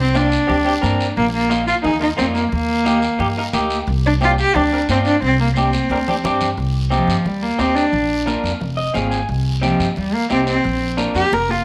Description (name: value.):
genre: latin, cumbia.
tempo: 177 BPM.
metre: 4/4.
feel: straight.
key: C minor.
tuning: A4 = 440 Hz.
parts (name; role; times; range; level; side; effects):
rich cello; melody; 0.0-11.6 s; F3 to Bb4; -21 LUFS; equal; none.
upright bass; bass; 0.0-11.6 s; F1 to G2; -24 LUFS; equal; none.
electric guitar through a small old amp; accompaniment; 0.1-11.2 s; Bb3 to Ab5; -24 LUFS; equal; none.
congas; percussion; 0.1-11.6 s; none; -30 LUFS; equal; none.
guiro; percussion; 0.1-11.6 s; none; -33 LUFS; equal; none.
room: moderate echo chamber reverb, RT60 1.4 s.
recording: none.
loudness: -18 LUFS.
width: mono.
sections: 0.0-6.6 A section; 6.6-11.6 B section.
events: drum fill 5.7-6.6, 11.3-11.6; cello solo 6.6-11.6; clean electric guitar fill 8.6-9.3.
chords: 0.0 Csus2; 1.2 Bbsus4; 2.5 Eb; 3.9 Csus2; 6.6 Cm; 7.9 Bb; 8.6 Fm; 9.3 Cm; 10.6 Bb.